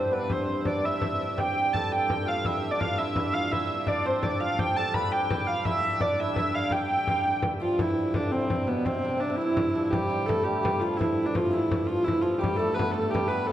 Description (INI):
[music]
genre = medieval dance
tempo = 112 BPM (dotted quarters)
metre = 6/8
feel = straight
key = G mixolydian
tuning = A4 = 439 Hz
[part]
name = dark hurdy-gurdy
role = melody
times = 0.0-13.5 s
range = B3 to B5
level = -26 LUFS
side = equal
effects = tape echo
[part]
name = hammered dulcimer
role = second line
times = 0.0-13.5 s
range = B2 to B4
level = -31 LUFS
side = right 3 dB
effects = none
[part]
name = hand-pumped harmonium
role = drone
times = 0.0-13.5 s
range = G2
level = -37 LUFS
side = left 2 dB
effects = none
[part]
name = frame drum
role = percussion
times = 0.3-13.4 s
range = none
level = -32 LUFS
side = left 2 dB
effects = none
[sound]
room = wet recital hall reverb, RT60 1.9 s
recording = dark, warm production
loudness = -24 LUFS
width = side -12 dB against mid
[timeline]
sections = 0.0-7.8 A section; 7.8-13.5 A section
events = none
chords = none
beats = | 0.30 0.84 | 1.37 1.91 | 2.44 2.98 | 3.51 4.05 | 4.58 5.12 | 5.66 6.19 | 6.72 7.26 | 7.79 8.33 | 8.87 9.40 | 9.94 10.47 | 11.01 11.54 | 12.07 12.61 | 13.14